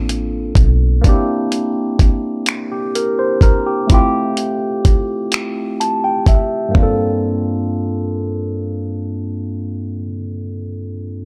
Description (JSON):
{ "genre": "slow six-eight R&B", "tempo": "42 BPM (dotted quarters)", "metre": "6/8", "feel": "straight", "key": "G dorian", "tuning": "A4 = 439 Hz", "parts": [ { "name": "barky tine electric piano", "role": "accompaniment", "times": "0.0-11.2 s", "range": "G2 to A5", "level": "-21 LUFS", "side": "equal", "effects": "overdrive, phaser" }, { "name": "vintage muted fingered electric bass", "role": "bass", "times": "0.0-1.0 s", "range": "A1 to B1", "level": "-18 LUFS", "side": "equal", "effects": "none" }, { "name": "dusty soul sampler-style drum kit", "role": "drums", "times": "0.1-7.0 s", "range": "finger snaps, hi-hat, kick drum, toms", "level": "-15 LUFS", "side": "equal", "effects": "none" } ], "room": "little or no reverb", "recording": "none", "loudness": "-17 LUFS", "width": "mono", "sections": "0.0-6.8 A section; 6.8-9.6 B section", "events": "tine electric piano fill 5.3-6.8", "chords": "0.0 Gm11 (rootless); 1.0 C7; 3.9 Fmaj9; 6.8 Gm11", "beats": "| 1.04 2.46 | 3.89 5.32 | 6.75 8.18" }